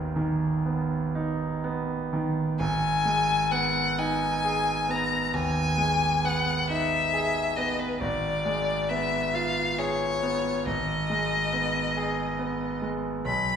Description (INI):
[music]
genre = classical, romantic duo for violin and grand piano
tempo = 40-47 BPM (dotted quarters)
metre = 12/8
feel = rubato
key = G# minor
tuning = A4 = 440 Hz
[part]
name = bright concert grand piano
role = accompaniment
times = 0.0-13.6 s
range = G#1 to G#5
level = -27 LUFS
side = right 2 dB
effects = none
[part]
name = clear violin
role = melody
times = 2.6-13.6 s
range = B4 to B5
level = -26 LUFS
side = left 4 dB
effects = none
[sound]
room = wet recital hall reverb, RT60 1.6 s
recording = recorded in a church or concert hall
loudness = -24 LUFS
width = side -8 dB against mid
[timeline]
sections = 0.0-2.6 A section; 2.6-13.6 A section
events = none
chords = 0.0 G#m; 8.0 G#dim7; 10.7 G#m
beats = 1.14 | 2.59 3.98 5.34 6.69 | 8.00 9.34 10.66 11.96 | 13.25